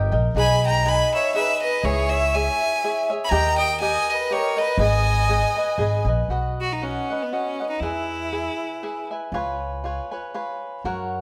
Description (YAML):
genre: mexican folk, mariachi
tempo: 120 BPM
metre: 3/4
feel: swing 54% on 8ths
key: G# harmonic minor, B major from 6.3 s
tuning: A4 = 440 Hz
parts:
  - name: cavaquinho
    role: accompaniment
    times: 0.0-11.2 s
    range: D#4 to G#5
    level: -27 LUFS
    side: equal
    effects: none
  - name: upright bass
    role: bass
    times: 0.0-11.2 s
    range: G#1 to F#2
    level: -27 LUFS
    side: equal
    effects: none
  - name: bright violin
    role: melody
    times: 0.4-9.1 s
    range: B3 to B5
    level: -26 LUFS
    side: equal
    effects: none
  - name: clear chamber violin section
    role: second line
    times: 0.4-6.0 s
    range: G#4 to G#5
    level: -30 LUFS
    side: equal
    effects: none
room: moderate recital hall reverb, RT60 1.6 s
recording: none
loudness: -23 LUFS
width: mono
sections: 0.0-6.3 A section; 6.3-11.2 B section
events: none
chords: 0.4 G#m/B; 1.8 C#m; 3.3 D#; 4.8 G#m; 6.3 B; 7.8 E; 9.3 C#7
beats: | 0.35 0.85 1.34 | 1.84 2.33 2.82 | 3.31 3.80 4.30 | 4.79 5.29 5.79 | 6.30 6.81 7.32 | 7.83 8.34 8.84 | 9.35 9.85 10.35 | 10.86